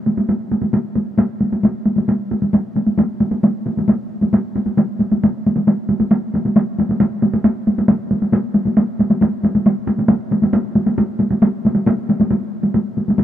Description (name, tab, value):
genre	japanese traditional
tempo	135 BPM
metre	4/4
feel	straight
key	none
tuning	none
part	taiko ensemble	percussion	0.1-13.2 s	none	-15 LUFS	equal	none
room	moderate huge ambient reverb, RT60 6.1 s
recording	dark, warm production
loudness	-15 LUFS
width	side -11 dB against mid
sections	0.0-12.3 A section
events	none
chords	none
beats	0.29 0.74 1.19 | 1.64 2.09 2.54 2.98 | 3.43 3.88 4.33 4.77 | 5.22 5.67 6.11 6.56 | 7.00 7.44 7.89 8.33 | 8.78 9.22 9.66 10.10 | 10.54 10.98 11.43 11.87 | 12.30 12.74 13.18